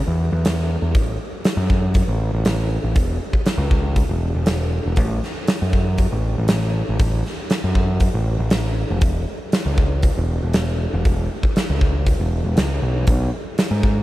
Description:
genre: blues rock power trio and southern rock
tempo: 119 BPM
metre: 4/4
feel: straight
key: E major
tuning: A4 = 440 Hz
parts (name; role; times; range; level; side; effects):
- growling picked electric bass; bass; 0.1-14.0 s; E1 to G#2; -20 LUFS; equal; overdrive
- huge arena drum kit; drums; 0.4-14.0 s; hi-hat, kick drum, snare drum; -20 LUFS; equal; none
room: little or no reverb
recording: none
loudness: -17 LUFS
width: side -16 dB against mid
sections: 0.0-14.0 A section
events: none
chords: none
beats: 0.45 | 0.95 1.45 1.96 2.46 | 2.96 3.47 3.97 4.48 | 4.98 5.49 5.99 6.50 | 7.00 7.51 8.02 8.52 | 9.03 9.53 10.04 10.55 | 11.05 11.56 12.07 12.57 | 13.08 13.59

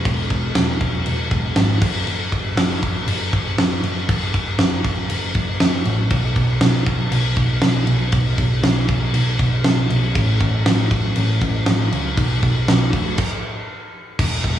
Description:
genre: classic rock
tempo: 119 BPM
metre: 4/4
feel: straight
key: unclear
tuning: A4 = 440 Hz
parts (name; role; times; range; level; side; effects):
- hollow-body short-scale picked electric bass; bass; 0.0-14.6 s; E1 to D2; -20 LUFS; equal; none
- big rock drum kit; drums; 0.1-14.6 s; crash cymbal, kick drum, snare drum; -19 LUFS; equal; none
room: light reverb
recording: live gig heard through the venue's PA, club reverb, small room ambience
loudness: -16 LUFS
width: side -11 dB against mid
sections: 0.0-14.2 A section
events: stop 13.2-14.2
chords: none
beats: | 0.06 0.56 1.07 1.57 | 2.08 2.58 3.08 3.59 | 4.09 4.60 5.10 5.61 | 6.11 6.62 7.12 7.63 | 8.13 8.64 9.14 9.65 | 10.15 10.66 11.16 11.66 | 12.17 12.67 13.18 13.68 | 14.19

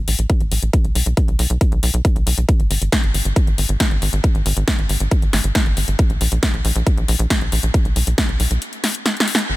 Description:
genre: uplifting trance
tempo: 137 BPM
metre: 4/4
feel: straight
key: G# minor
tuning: A4 = 440 Hz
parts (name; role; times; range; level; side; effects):
- tight sequencer bass; bass; 0.0-9.6 s; G#1 to B1; -19 LUFS; equal; sidechain pumping
- big-room dance drum kit; drums; 0.1-9.5 s; hi-hat, snare drum; -21 LUFS; left 1 dB; low-pass filter on hats, low-pass filter on snare
- electronic kick drum; drums; 0.3-8.3 s; none; -17 LUFS; equal; none
room: little or no reverb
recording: none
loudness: -15 LUFS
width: side -18 dB against mid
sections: 0.0-9.5 A section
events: drum fill 9.1-9.5; band accent 9.3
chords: none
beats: 0.30 | 0.73 1.17 1.61 2.05 | 2.49 2.92 3.36 3.80 | 4.24 4.68 5.12 5.55 | 5.99 6.43 6.87 7.30 | 7.74 8.18 8.62 9.06 | 9.49

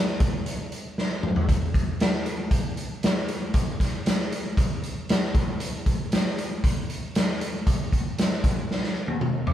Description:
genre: rock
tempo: 116 BPM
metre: 4/4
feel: straight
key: none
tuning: none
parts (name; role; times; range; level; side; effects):
- raw garage drum kit; drums; 0.2-9.5 s; hi-hat, kick drum, snare drum, toms; -23 LUFS; equal; none
room: light reverb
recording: band playing live in one room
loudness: -23 LUFS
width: side -11 dB against mid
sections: 0.0-9.5 A section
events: drum fill 1.0-1.5, 8.7-9.5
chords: none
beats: 0.47 0.98 | 1.49 2.00 2.52 3.03 | 3.55 4.06 4.58 5.09 | 5.61 6.12 6.64 7.15 | 7.67 8.18 8.70 9.21

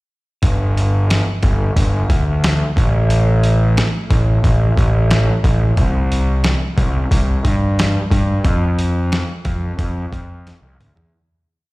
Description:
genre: quiet-loud alternative rock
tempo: 90 BPM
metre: 4/4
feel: straight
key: unclear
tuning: A4 = 442 Hz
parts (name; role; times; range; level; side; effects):
- fuzz picked electric bass; bass; 0.4-11.1 s; G1 to G2; -15 LUFS; equal; overdrive
- dusty soul sampler-style drum kit; drums; 0.4-11.1 s; hi-hat, kick drum, snare drum, toms; -18 LUFS; equal; overdrive, slapback echo
room: digital ambience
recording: live gig heard through the venue's PA, recital hall reverb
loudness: -14 LUFS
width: side -21 dB against mid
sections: 0.4-11.1 verse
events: fade-out 8.5-11.1; drum fill 10.5-11.1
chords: none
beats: | 0.43 1.10 1.77 2.44 | 3.10 3.77 4.44 5.11 | 5.78 6.44 7.11 7.78 | 8.45 9.12 9.79 10.46

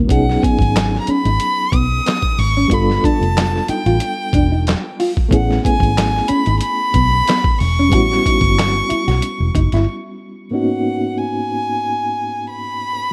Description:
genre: R&B, neo-soul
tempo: 92 BPM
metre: 4/4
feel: swing 53% on 16ths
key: unclear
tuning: A4 = 443 Hz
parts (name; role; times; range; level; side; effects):
- mellow electric guitar; second line; 0.0-9.8 s; B3 to F#4; -23 LUFS; equal; none
- bright reed electric piano; accompaniment; 0.0-13.1 s; G#2 to A#4; -24 LUFS; equal; fast tremolo
- vintage muted fingered electric bass; bass; 0.0-9.8 s; E1 to B1; -20 LUFS; equal; none
- rich violin; melody; 0.1-13.1 s; F#5 to D#6; -22 LUFS; equal; none
- boom bap sampler-style drum kit; drums; 0.1-9.9 s; handclaps, hi-hat, kick drum, snare drum; -21 LUFS; equal; none
room: light reverb, digital ambience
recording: none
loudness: -17 LUFS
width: mono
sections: 0.1-10.5 A section; 10.5-13.1 B section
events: break 9.9-10.5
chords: 0.1 B69; 2.7 G9; 5.3 Amaj9; 7.9 A13 (rootless); 10.5 G#m11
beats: | 0.09 0.74 1.40 2.05 | 2.70 3.35 4.00 4.66 | 5.31 5.96 6.61 7.26 | 7.92 8.57 9.22 9.87 | 10.53 11.18 11.83 12.48

